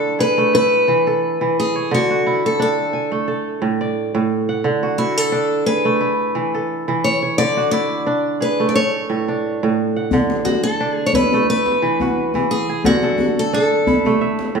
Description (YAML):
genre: west african traditional, West African string and xylophone music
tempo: 88 BPM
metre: 4/4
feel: swing 55% on 16ths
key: D lydian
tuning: A4 = 440 Hz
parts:
  - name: picked steel-string acoustic guitar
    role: melody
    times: 0.0-14.5 s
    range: F#4 to D5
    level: -18 LUFS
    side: left 2 dB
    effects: none
  - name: kora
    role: arpeggios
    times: 0.0-14.6 s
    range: A2 to G#5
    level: -19 LUFS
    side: right 3 dB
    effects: none
  - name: djembe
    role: percussion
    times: 10.1-14.5 s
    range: none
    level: -21 LUFS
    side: left 3 dB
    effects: none
room: moderate recital hall reverb, RT60 1.7 s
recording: small room ambience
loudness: -16 LUFS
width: side -5 dB against mid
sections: 0.0-10.1 A section; 10.1-14.6 A section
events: none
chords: 0.0 D; 0.5 E; 1.9 D; 3.3 Asus4; 4.6 D; 6.0 E; 7.4 D; 8.7 A; 10.1 D; 11.5 E; 12.8 D5